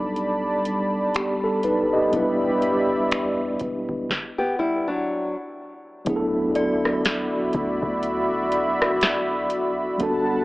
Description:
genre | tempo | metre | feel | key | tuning
contemporary R&B | 61 BPM | 4/4 | swing 58% on 16ths | D major | A4 = 440 Hz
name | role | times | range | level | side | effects
mellow tine electric piano | accompaniment | 0.0-10.4 s | F#3 to D#5 | -24 LUFS | equal | medium stereo tremolo, tape echo
warm analog pad | sustained chords | 0.0-10.4 s | G3 to B5 | -24 LUFS | equal | chorus
warm 808-style bass | bass | 0.0-10.4 s | E1 to E2 | -36 LUFS | equal | none
booming analog drum machine | drums | 0.2-10.3 s | finger snaps, hi-hat, kick drum, rim click, snare drum | -26 LUFS | equal | none
nylon-string guitar | arpeggios | 4.4-5.3 s | F#3 to G4 | -24 LUFS | left 1 dB | tape echo
synth chime | texture | 6.6-7.9 s | D5 | -31 LUFS | equal | ensemble chorus, tremolo, tape echo
room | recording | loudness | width
moderate spring reverb, RT60 2.2 s | echo-heavy mix, AM radio sound | -21 LUFS | side -20 dB against mid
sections
0.0-6.1 A section; 6.1-10.4 B section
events
stop 4.1-6.1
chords
0.0 B7alt; 2.1 Em7; 5.1 N.C.; 6.1 D69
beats
0.17 1.15 | 2.13 3.12 4.10 5.08 | 6.07 7.05 8.03 9.02 | 10.00

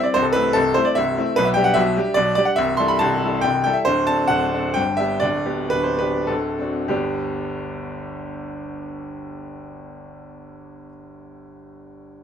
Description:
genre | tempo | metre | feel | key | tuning
classical, romantic triple-time dance for piano with dotted rhythms | 94-154 BPM | 3/4 | rubato | G major | A4 = 440 Hz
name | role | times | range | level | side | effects
clear grand piano | solo | 0.0-12.2 s | C1 to C6 | -19 LUFS | equal | none
room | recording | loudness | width
little or no reverb | close, detailed microphones | -18 LUFS | side -8 dB against mid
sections
0.0-6.9 A section; 6.9-10.4 B section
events
slowing down 3.2-6.9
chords
0.1 Am/C; 1.4 G/B; 2.6 Am7/C; 3.9 D7; 4.8 G; 5.2 G/D; 6.3 D7; 6.9 G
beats
| 0.14 0.56 0.98 | 1.38 1.78 2.19 | 2.59 3.02 3.46 | 3.89 4.32 4.78 | 5.24 5.74 6.29 | 6.90 7.47 8.05 | 8.61 9.19 9.80

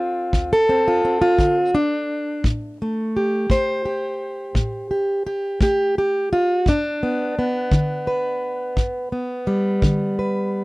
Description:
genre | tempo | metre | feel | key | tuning
acoustic country blues, solo or duo | 57 BPM (dotted quarters) | 12/8 | straight | unclear | A4 = 443 Hz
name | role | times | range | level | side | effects
fingerpicked plugged-in steel-string acoustic guitar | melody | 0.0-10.6 s | D2 to C5 | -19 LUFS | equal | none
kick drum | drums | 0.3-10.0 s | none | -21 LUFS | equal | none
room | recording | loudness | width
little or no reverb | dry, close 1970s-style studio recording | -18 LUFS | side -22 dB against mid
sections
0.0-10.6 A section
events
none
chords
0.0 D5; 2.4 Am7; 6.7 G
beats
0.34 1.39 | 2.44 3.50 4.55 5.60 | 6.66 7.71 8.77 9.82

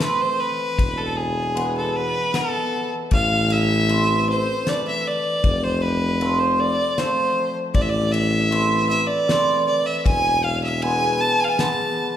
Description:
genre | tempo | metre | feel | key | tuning
klezmer | 78 BPM | 3/4 | straight | A harmonic minor | A4 = 439 Hz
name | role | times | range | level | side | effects
clear violin | melody | 0.0-12.2 s | G#4 to A5 | -22 LUFS | equal | none
cimbalom | accompaniment | 0.0-12.2 s | E3 to D4 | -25 LUFS | right 1 dB | none
damped 70s drum kit | drums | 0.0-11.8 s | kick drum, ride cymbal, snare drum | -24 LUFS | left 2 dB | none
mellow tuba | bass | 0.8-11.4 s | E1 to A1 | -24 LUFS | equal | none
room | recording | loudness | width
wet recital hall reverb, RT60 1.5 s | recorded in a church or concert hall | -18 LUFS | side -10 dB against mid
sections
0.0-12.2 A section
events
none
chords
0.0 Am; 0.8 E; 3.1 Am; 5.4 F; 7.8 Am; 10.1 E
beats
0.00 | 0.78 1.56 2.34 | 3.11 3.89 4.66 | 5.44 6.21 6.98 | 7.75 8.52 9.29 | 10.06 10.82 11.59

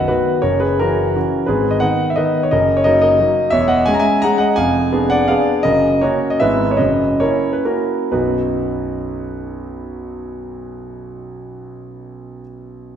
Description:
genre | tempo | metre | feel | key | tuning
classical, romantic triple-time dance for piano with dotted rhythms | 120-193 BPM | 3/4 | rubato | B major | A4 = 440 Hz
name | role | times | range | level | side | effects
clear concert grand piano | solo | 0.0-13.0 s | B0 to A#5 | -15 LUFS | equal | none
room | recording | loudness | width
wet recital hall reverb, RT60 1.6 s | none | -14 LUFS | side -8 dB against mid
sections
0.0-8.1 A section; 8.1-11.0 B section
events
slowing down 5.1-8.1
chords
0.4 F#7; 1.5 G#m; 2.5 D#m/F#; 3.5 C#m/E; 4.6 Fdim7; 5.6 F#; 6.4 E/G#; 6.8 F#7; 8.1 B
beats
0.09 | 0.44 0.80 1.16 | 1.48 1.82 2.18 | 2.52 2.84 3.18 | 3.51 3.86 4.22 | 4.56 4.93 5.29 | 5.64 6.01 6.40 | 6.79 7.20 7.66 | 8.14 8.61 9.08 | 9.54 10.00 10.49

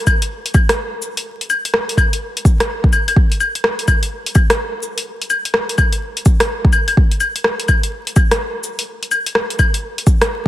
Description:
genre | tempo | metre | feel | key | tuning
future garage | 126 BPM | 4/4 | swing 63% on 16ths | none | none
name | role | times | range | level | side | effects
deep house drum kit | drums | 0.1-10.3 s | cabasa, claves, hi-hat, rim click | -17 LUFS | left 1 dB | overdrive
electronic kick drum | drums | 0.1-10.5 s | none | -13 LUFS | equal | overdrive
room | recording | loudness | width
light reverb | dense, heavily limited modern master, vinyl crackle | -14 LUFS | side -14 dB against mid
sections
0.0-10.5 A section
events
none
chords
none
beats
0.31 0.78 | 1.26 1.74 2.21 2.69 | 3.17 3.64 4.12 4.59 | 5.07 5.54 6.02 6.50 | 6.97 7.45 7.93 8.40 | 8.88 9.36 9.83 10.31

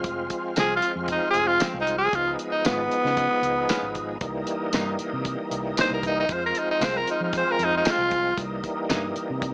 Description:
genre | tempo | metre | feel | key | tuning
straight-eighth soul blues | 115 BPM | 4/4 | straight | F minor | A4 = 440 Hz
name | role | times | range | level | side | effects
overdriven tonewheel organ | accompaniment | 0.0-9.5 s | E3 to F4 | -31 LUFS | equal | slow rotary speaker, chorus vibrato, plate reverb
vintage muted fingered electric bass | bass | 0.0-9.5 s | F1 to F3 | -37 LUFS | equal | none
damped 70s drum kit | drums | 0.0-9.5 s | hi-hat, kick drum, snare drum, tambourine | -31 LUFS | equal | none
growling tenor saxophone | melody | 0.6-8.4 s | Cb4 to C5 | -25 LUFS | equal | none
direct-recorded clean electric guitar | stabs | 0.6-9.1 s | F2 to F4 | -33 LUFS | equal | analog chorus, plate reverb
room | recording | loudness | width
moderate studio ambience, RT60 0.5 s | small speaker sound | -25 LUFS | mono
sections
0.0-9.5 A section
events
none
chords
0.0 Fm; 2.1 Db7; 4.2 C7#9; 6.3 Fm; 8.4 C7#9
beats
| 0.04 0.57 1.09 1.61 | 2.13 2.65 3.17 3.69 | 4.21 4.73 5.25 5.78 | 6.30 6.82 7.34 7.86 | 8.38 8.90 9.42

